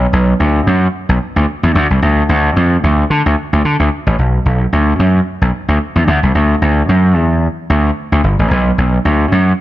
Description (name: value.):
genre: funk.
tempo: 111 BPM.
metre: 4/4.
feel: swing 56% on 16ths.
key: B minor.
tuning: A4 = 440 Hz.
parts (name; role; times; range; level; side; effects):
gritty slap bass; solo; 0.0-9.5 s; G1 to D3; -11 LUFS; equal; overdrive.
room: moderate echo chamber reverb, RT60 1.6 s.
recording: dark, warm production.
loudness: -11 LUFS.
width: side -14 dB against mid.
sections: 0.0-9.6 A section.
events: none.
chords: none.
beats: 0.40 0.94 1.48 | 2.02 2.56 3.10 3.64 | 4.18 4.72 5.26 5.81 | 6.35 6.89 7.43 7.97 | 8.51 9.05.